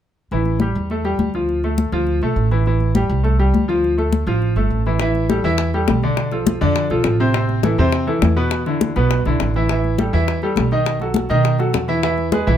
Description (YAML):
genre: latin, salsa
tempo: 205 BPM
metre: 4/4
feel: straight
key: A minor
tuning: A4 = 440 Hz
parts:
  - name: bright grand piano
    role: accompaniment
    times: 0.3-12.6 s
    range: B2 to E5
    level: -19 LUFS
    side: left 1 dB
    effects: none
  - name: upright bass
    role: bass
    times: 0.3-12.6 s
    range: G1 to B2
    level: -19 LUFS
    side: right 1 dB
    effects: none
  - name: congas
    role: percussion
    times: 0.3-12.5 s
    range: none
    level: -22 LUFS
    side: left 4 dB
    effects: none
  - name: bongos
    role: percussion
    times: 5.0-12.5 s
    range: none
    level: -24 LUFS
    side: left 8 dB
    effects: none
room: light reverb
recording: close, detailed microphones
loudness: -16 LUFS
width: side -10 dB against mid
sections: 0.3-5.0 A section; 5.0-12.6 B section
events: none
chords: 0.3 A5; 1.5 Dm; 2.7 Am7; 3.8 Dm; 5.0 A5; 6.2 Bm7b5; 7.3 Am; 8.5 E5; 9.7 A5; 10.9 B7; 12.0 E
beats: | 0.31 0.60 0.90 1.19 | 1.48 1.78 2.07 2.36 | 2.66 2.95 3.24 3.54 | 3.83 4.12 4.41 4.71 | 5.00 5.29 5.59 5.88 | 6.17 6.47 6.76 7.05 | 7.35 7.64 7.93 8.23 | 8.52 8.81 9.11 9.40 | 9.69 9.98 10.28 10.57 | 10.86 11.15 11.45 11.74 | 12.03 12.32